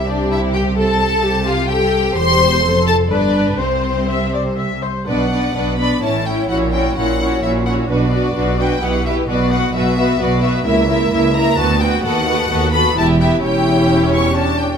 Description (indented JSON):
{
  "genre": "quick classical-period movement for string orchestra",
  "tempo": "129 BPM",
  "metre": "3/4",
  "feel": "rubato",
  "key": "C major, B minor from 5.1 s",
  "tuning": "A4 = 441 Hz",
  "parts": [
    { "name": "rich studio violin section", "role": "melody", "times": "0.0-14.8 s", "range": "C5 to C#6", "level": "-21 LUFS", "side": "left 3 dB", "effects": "none" },
    { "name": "rich studio violin section", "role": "second line", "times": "0.0-14.8 s", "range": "C4 to E5", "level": "-20 LUFS", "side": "equal", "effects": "none" },
    { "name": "warm studio viola section", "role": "accompaniment", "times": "0.0-14.8 s", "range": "A#3 to E5", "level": "-20 LUFS", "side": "left 1 dB", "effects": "none" },
    { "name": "rich studio cello section", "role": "bass", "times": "0.0-14.8 s", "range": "C#2 to C3", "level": "-21 LUFS", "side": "right 1 dB", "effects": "none" },
    { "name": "rich studio double bass section", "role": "bass", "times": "0.0-14.8 s", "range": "E1 to D#2", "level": "-21 LUFS", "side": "right 2 dB", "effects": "none" }
  ],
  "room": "moderate recital hall reverb, RT60 1.9 s",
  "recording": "none",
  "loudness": "-14 LUFS",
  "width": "side -7 dB against mid",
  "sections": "0.0-5.1 A section; 5.1-14.8 B section",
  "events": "none",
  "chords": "0.0 C5; 2.2 C/E; 2.6 F; 3.1 G; 3.6 C; 5.1 Bm; 6.0 A; 6.5 F#7/A#; 7.9 Bm; 8.8 Em/B; 9.3 B5; 10.7 A#dim/C#; 11.6 Bm/D; 12.0 B7/D#; 13.0 Em; 13.4 C#dim/E",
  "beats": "0.33 | 0.79 1.25 1.70 | 2.17 2.64 3.11 | 3.60 4.09 4.58 | 5.07 5.55 6.03 | 6.50 6.97 7.44 | 7.90 8.36 8.82 | 9.29 9.75 10.21 | 10.66 11.12 11.58 | 12.04 12.51 12.98 | 13.44 13.90 14.38"
}